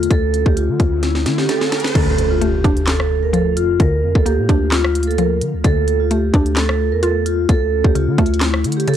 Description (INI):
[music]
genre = hip hop, trap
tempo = 130 BPM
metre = 4/4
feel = half-time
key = D harmonic minor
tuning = A4 = 440 Hz
[part]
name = vibraphone with medium mallets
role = melody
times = 0.0-9.0 s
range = E4 to Bb4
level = -19 LUFS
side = moving between left 4 dB and right 7 dB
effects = auto-pan
[part]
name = glassy FM pad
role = sustained chords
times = 0.0-9.0 s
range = D3 to F4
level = -26 LUFS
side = left 4 dB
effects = ensemble chorus, built-in reverb
[part]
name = hard-hitting 808-style bass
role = bass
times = 0.0-8.9 s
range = D2 to D3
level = -19 LUFS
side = equal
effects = none
[part]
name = trap drum kit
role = drums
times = 0.0-9.0 s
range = crash cymbal, handclaps, hi-hat, kick drum, rim click, snare drum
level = -18 LUFS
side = equal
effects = none
[part]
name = riser and impact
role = sound effects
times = 1.1-3.8 s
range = none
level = -27 LUFS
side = equal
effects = none
[part]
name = mallet-like synth pluck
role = accompaniment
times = 2.0-9.0 s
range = D2 to F4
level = -22 LUFS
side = equal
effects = chorus
[sound]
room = little or no reverb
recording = dry, gritty hardware recording, transformer saturation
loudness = -14 LUFS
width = side -10 dB against mid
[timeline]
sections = 0.0-2.0 A section; 2.0-9.0 B section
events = riser 1.1-2.0; drum fill 1.0-2.0; impact 2.0-3.8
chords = 0.1 A/D; 2.0 Dm; 3.8 Bb/D; 5.6 Dm; 7.5 A/D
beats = | 0.11 0.57 1.03 1.49 | 1.95 2.41 2.88 3.34 | 3.80 4.26 4.72 5.18 | 5.64 6.11 6.57 7.03 | 7.49 7.95 8.41 8.88